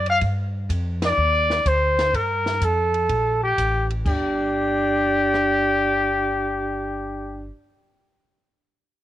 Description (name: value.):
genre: jazz, small-group swing and bop.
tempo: 125 BPM.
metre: 4/4.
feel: swing 68% on 8ths.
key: G minor.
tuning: A4 = 438 Hz.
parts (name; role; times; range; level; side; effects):
warm trumpet; melody; 0.0-7.5 s; G4 to E#5; -20 LUFS; left 1 dB; none.
upright bass; bass; 0.0-7.5 s; G1 to G2; -26 LUFS; equal; none.
compact cocktail drum kit; drums; 0.1-5.4 s; crash cymbal, hi-hat, kick drum, ride cymbal, rim click, snare drum; -29 LUFS; equal; cassette tape.
breathy alto saxophone; second line; 4.1-7.5 s; D4; -25 LUFS; right 2 dB; cassette tape.
room: moderate studio reverb, RT60 0.6 s.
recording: home recording on cassette.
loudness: -19 LUFS.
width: side -13 dB against mid.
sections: 0.0-4.1 A section; 4.1-7.9 B section.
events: band accent 0.9.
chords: 0.2 Cmadd9; 2.1 Gm9; 4.1 G5.